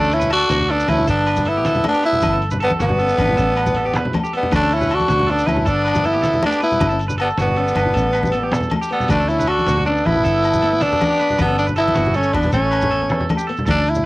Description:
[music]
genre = highlife guitar band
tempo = 105 BPM (dotted quarters)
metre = 12/8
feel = straight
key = D major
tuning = A4 = 440 Hz
[part]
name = raspy tenor saxophone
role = melody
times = 0.0-14.1 s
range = B3 to F#4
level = -18 LUFS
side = equal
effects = cassette tape
[part]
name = growling tenor saxophone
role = second line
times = 0.0-13.2 s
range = G3 to D4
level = -29 LUFS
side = left 2 dB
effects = cassette tape
[part]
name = nylon-string guitar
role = accompaniment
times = 0.0-14.1 s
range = A3 to E4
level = -30 LUFS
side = left 3 dB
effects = none
[part]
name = electric guitar at the edge of break-up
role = arpeggios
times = 0.0-13.8 s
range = F#4 to B4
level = -26 LUFS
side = right 3 dB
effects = cassette tape
[part]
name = fingered electric bass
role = bass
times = 0.0-14.1 s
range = G1 to E2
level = -22 LUFS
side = equal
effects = none
[part]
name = shekere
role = percussion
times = 0.0-14.0 s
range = none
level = -31 LUFS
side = right 1 dB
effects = none
[part]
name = lo-fi sampler-style drum kit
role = drums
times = 0.1-14.0 s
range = hi-hat, kick drum, snare drum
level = -28 LUFS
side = equal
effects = none
[part]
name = congas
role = percussion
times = 0.2-14.1 s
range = none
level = -24 LUFS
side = left 1 dB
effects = none
[part]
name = agogo bells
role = percussion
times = 0.3-13.9 s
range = none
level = -28 LUFS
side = left 3 dB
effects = none
[sound]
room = moderate small room reverb, RT60 0.5 s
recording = home recording on cassette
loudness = -15 LUFS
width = side -20 dB against mid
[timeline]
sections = 0.0-13.7 A section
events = none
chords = 0.0 D; 1.1 Gadd9; 2.2 Emadd9/G (rootless); 3.4 Asus2; 4.5 D; 5.7 Gadd9; 6.8 Emadd9/G; 8.0 Asus2; 9.1 D; 10.2 Gadd9; 11.4 Emadd9/G; 12.5 Aadd9

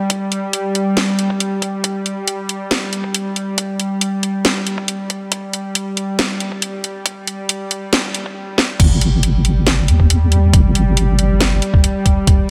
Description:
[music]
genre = deep dubstep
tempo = 138 BPM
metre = 4/4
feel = half-time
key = unclear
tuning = A4 = 438 Hz
[part]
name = bowed-like drone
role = sustained chords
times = 0.0-12.5 s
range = G3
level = -24 LUFS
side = equal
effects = built-in reverb
[part]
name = electronic kick drum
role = drums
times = 0.1-12.4 s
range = none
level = -16 LUFS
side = equal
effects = high-pass filter on kick
[part]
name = garage drum kit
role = drums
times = 0.1-12.4 s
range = crash cymbal, hi-hat, snare drum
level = -20 LUFS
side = equal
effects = none
[part]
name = deep soft wobble bass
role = bass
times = 8.8-11.6 s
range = G1 to E2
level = -16 LUFS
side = equal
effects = chorus
[sound]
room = light reverb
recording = none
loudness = -17 LUFS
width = mono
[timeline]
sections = 0.0-8.8 A section; 8.8-12.5 B section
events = build-up 0.0-8.8; drum fill 8.6; drop 8.8-12.5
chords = 0.0 N.C.; 8.8 Em/G

